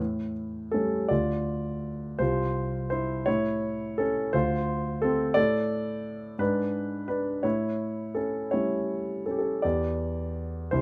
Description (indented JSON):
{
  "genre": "classical, lyrical solo piano",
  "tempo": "56 BPM (dotted quarters)",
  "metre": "6/8",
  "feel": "uneven beats, rubato",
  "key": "D minor",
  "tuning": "A4 = 438 Hz",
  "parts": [
    { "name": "warm concert grand piano", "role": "solo", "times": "0.0-10.8 s", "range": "C2 to D5", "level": "-28 LUFS", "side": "equal", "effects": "none" }
  ],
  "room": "light reverb",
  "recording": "close, detailed microphones",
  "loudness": "-28 LUFS",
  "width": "mono",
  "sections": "0.0-1.1 A section; 1.1-10.8 B section",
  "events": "none",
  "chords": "0.0 A7; 1.1 Dm; 2.2 Csus4; 3.3 A; 4.3 Dm7; 5.4 N.C.; 6.4 G#dim; 7.4 A7; 9.6 Em7"
}